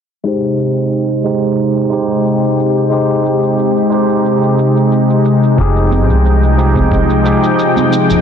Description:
sunset chillout; 90 BPM; 4/4; straight; A4 = 442 Hz
overdriven tine electric piano; accompaniment; 0.2-8.2 s; F3 to C5; -15 LUFS; moving between left 4 dB and right 5 dB; auto-pan, low-pass filter, ping-pong delay
lush unison pad; sustained chords; 0.2-8.2 s; C3 to G5; -13 LUFS; left 1 dB; chorus
shaker; drums; 0.3-8.2 s; -30 LUFS; right 1 dB; studio reverb
upright bass; bass; 5.6-8.2 s; F1 to Eb2; -13 LUFS; equal
electronic kick drum; drums; 5.6-7.1 s; -16 LUFS; equal; studio reverb
congas; percussion; 5.9-7.9 s; -22 LUFS; right 4 dB
moderate plate reverb, RT60 1.8 s, small room reverb; dense, heavily limited modern master, low-pass filter; -10 LUFS; side -7 dB against mid
0.3-8.2 A section
filter sweep on tine electric piano 0.3-8.2; filter sweep on analog synth pad 0.3-8.2; filter sweep 0.3-8.2
0.3 Abmaj7; 5.6 Fm9

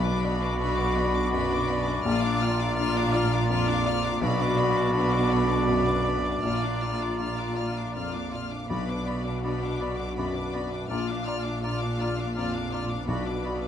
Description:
cinematic, emotional film score for orchestra; 82 BPM; 3/4; rubato; A4 = 441 Hz
rich studio violin section; melody; 0.0-13.7 s; B5 to E#6; -36 LUFS; left 5 dB
clear oboe; second line; 0.0-13.6 s; D5; -35 LUFS; right 1 dB
mellow clarinet; second line; 0.0-13.6 s; E#4 to F#4; -36 LUFS; left 1 dB
mellow hollow silver concert flute; second line; 0.0-13.5 s; A#5 to B5; -36 LUFS; left 2 dB
rich studio violin section; second line; 0.0-13.7 s; B4 to E#5; -38 LUFS; left 2 dB
felt-muted upright piano; accompaniment; 0.0-13.7 s; A#1 to D5; -33 LUFS; left 4 dB
rich symphonic viola section; accompaniment; 0.0-13.7 s; B3 to E#4; -36 LUFS; equal
dark French horn section; sustained chords; 0.0-13.7 s; D4 to F#4; -32 LUFS; left 2 dB
rich studio cello section; bass; 0.0-13.7 s; A#2 to B2; -32 LUFS; right 2 dB
rich studio double bass section; bass; 0.0-13.7 s; A#1 to B1; -32 LUFS; right 3 dB
timpani; percussion; 0.0-0.9, 4.2-5.3, 8.7-9.8, 13.1-13.7 s; B2; -34 LUFS; left 1 dB
moderate concert hall reverb, RT60 1.9 s; -24 LUFS; side -9 dB against mid
0.0-13.7 A section
0.0 Bm; 2.1 A#; 4.2 Bm; 6.4 A#; 8.7 Bm; 10.9 A#; 13.1 Bm

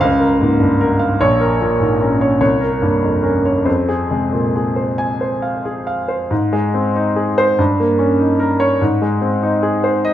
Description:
classical, romantic character piece for solo piano; 45-52 BPM (dotted quarters); 6/8; rubato; F minor, Ab major from 6.3 s; A4 = 440 Hz
clear grand piano; solo; 0.0-10.1 s; Bb1 to Ab5; -14 LUFS; equal
wet recital hall reverb, RT60 1.4 s; -14 LUFS; side -12 dB against mid
0.0-6.3 A section; 6.3-10.1 B section
0.0 Db6; 1.2 Bbm7; 2.4 C5; 3.7 Fm; 6.3 Ab; 7.6 Eb7/G; 8.8 Ab

